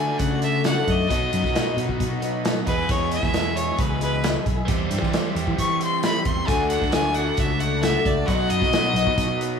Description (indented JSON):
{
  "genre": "folk rock and heartland rock",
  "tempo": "134 BPM",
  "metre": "4/4",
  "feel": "straight",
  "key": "E major",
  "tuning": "A4 = 441 Hz",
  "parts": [
    { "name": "bright fiddle", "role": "melody", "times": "0.0-9.4 s", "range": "B4 to C#6", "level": "-25 LUFS", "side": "left 2 dB", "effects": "none" },
    { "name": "picked old ladder-braced acoustic guitar", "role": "accompaniment", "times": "0.0-9.6 s", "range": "E2 to G#4", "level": "-29 LUFS", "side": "left 6 dB", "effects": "none" },
    { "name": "bright tonewheel organ", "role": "sustained chords", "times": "0.0-9.6 s", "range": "F#4 to C6", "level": "-34 LUFS", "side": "equal", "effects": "slow rotary speaker, overdrive" },
    { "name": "overdriven electric guitar", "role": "riff", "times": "0.0-9.6 s", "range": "E2 to G#4", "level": "-27 LUFS", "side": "right 2 dB", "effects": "none" },
    { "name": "fingered electric bass", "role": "bass", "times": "0.0-9.6 s", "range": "B1 to E3", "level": "-26 LUFS", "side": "equal", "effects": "none" },
    { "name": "natural country drum kit", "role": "drums", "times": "0.2-9.5 s", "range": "hi-hat, kick drum, snare drum", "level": "-26 LUFS", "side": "equal", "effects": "none" }
  ],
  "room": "light reverb, studio ambience",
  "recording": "studio reverb",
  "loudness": "-20 LUFS",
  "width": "side -6 dB against mid",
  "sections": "0.0-9.6 A section",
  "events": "fiddle solo 0.0-9.6",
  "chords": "0.0 D; 1.1 B; 2.7 E; 4.7 C/E; 6.5 D; 8.3 B"
}